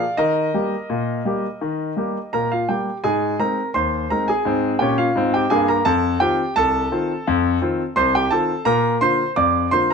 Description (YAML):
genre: ragtime piano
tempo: 85 BPM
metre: 2/4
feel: straight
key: Eb major, Ab major from 3.0 s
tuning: A4 = 440 Hz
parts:
  - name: clear concert grand piano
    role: solo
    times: 0.0-9.9 s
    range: C2 to D6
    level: -17 LUFS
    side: equal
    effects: none
room: moderate studio reverb, RT60 0.8 s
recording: dark, warm production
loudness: -18 LUFS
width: side -5 dB against mid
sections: 0.0-3.0 A section; 3.0-9.9 B section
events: none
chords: 0.2 Eb; 3.0 Ab; 5.9 F7; 8.7 Bb